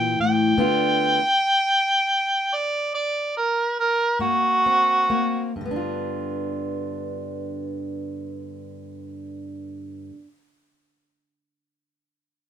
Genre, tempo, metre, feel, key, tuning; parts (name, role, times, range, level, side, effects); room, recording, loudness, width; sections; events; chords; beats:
acoustic country blues, solo or duo; 43-53 BPM (dotted quarters); 12/8; straight; G mixolydian; A4 = 440 Hz
mellow harmonica; melody; 0.0-5.5 s; Gb4 to G5; -19 LUFS; right 1 dB
fingerpicked plugged-in steel-string acoustic guitar; accompaniment; 0.0-10.3 s; G2 to G4; -26 LUFS; left 2 dB
light reverb; minimal, uncompressed stereo recording; -20 LUFS; side -9 dB against mid
0.0-5.6 A section; 5.6-11.2 B section
slowing down 0.0-5.6; harmonica solo 0.0-5.6
0.0 C7 (rootless); 0.6 G7; 4.2 Ab9; 5.6 G7
| 0.58 1.73 2.94 4.21 | 5.56 6.97 8.37 9.78